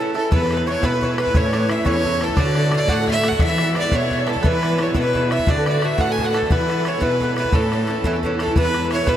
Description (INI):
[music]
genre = celtic folk, Celtic jig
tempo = 116 BPM (dotted quarters)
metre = 6/8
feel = straight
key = unclear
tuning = A4 = 440 Hz
[part]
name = rich fiddle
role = melody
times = 0.0-9.2 s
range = A4 to G#5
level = -23 LUFS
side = right 1 dB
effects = none
[part]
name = hollow concert flute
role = second line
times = 0.0-9.2 s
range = A4 to G#5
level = -27 LUFS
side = left 4 dB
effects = none
[part]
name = Irish bouzouki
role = accompaniment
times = 0.0-9.2 s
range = G#2 to F#4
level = -23 LUFS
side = right 2 dB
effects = none
[part]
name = bluegrass banjo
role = second line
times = 0.2-9.2 s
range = A4 to F#5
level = -30 LUFS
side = right 2 dB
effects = none
[part]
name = muted cello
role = bass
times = 0.3-9.2 s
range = E2 to E3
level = -23 LUFS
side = equal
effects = none
[part]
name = bodhran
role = percussion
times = 0.3-9.2 s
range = none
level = -23 LUFS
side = equal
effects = none
[sound]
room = wet huge ambient reverb, RT60 7.3 s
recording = in a vast, echoing space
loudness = -17 LUFS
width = side -10 dB against mid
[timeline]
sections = 0.3-8.6 A section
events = none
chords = 0.3 E; 1.3 A; 2.4 D; 3.4 E; 5.5 D; 6.5 E; 7.5 A; 8.6 E